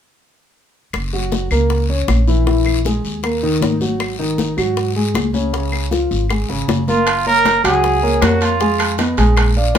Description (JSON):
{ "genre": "Afro-Cuban jazz", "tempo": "156 BPM", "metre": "4/4", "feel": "straight", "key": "F# major", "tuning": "A4 = 440 Hz", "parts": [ { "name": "upright bass", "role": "bass", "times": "0.9-9.8 s", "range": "F#1 to G#2", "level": "-19 LUFS", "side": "equal", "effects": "none" }, { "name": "bongos", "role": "percussion", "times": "0.9-9.8 s", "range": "none", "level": "-25 LUFS", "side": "left 5 dB", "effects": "none" }, { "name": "claves", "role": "percussion", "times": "0.9-9.6 s", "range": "none", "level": "-27 LUFS", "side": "left 6 dB", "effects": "none" }, { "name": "congas", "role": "percussion", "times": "0.9-9.8 s", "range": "none", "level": "-23 LUFS", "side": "left 5 dB", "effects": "none" }, { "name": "guiro", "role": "percussion", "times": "0.9-9.8 s", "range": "none", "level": "-30 LUFS", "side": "left 6 dB", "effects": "none" }, { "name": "warm grand piano", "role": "accompaniment", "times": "1.1-9.8 s", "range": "C#3 to Ab5", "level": "-18 LUFS", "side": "equal", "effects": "none" }, { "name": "mellow trumpet", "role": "melody", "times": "6.9-9.0 s", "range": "E#4 to A#4", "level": "-16 LUFS", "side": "right 3 dB", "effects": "none" }, { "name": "timbales", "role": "percussion", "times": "7.1-9.8 s", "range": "none", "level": "-22 LUFS", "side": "right 5 dB", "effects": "none" } ], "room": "moderate studio ambience, RT60 0.5 s", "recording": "band playing live in one room", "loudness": "-14 LUFS", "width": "side -9 dB against mid", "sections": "0.9-7.1 A section; 7.1-9.8 B section", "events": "none", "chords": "0.9 F#; 2.5 Emaj7#11/A#; 3.2 D#5; 4.0 G#5; 5.5 C#6; 7.1 F#maj9; 8.6 Fm7b5" }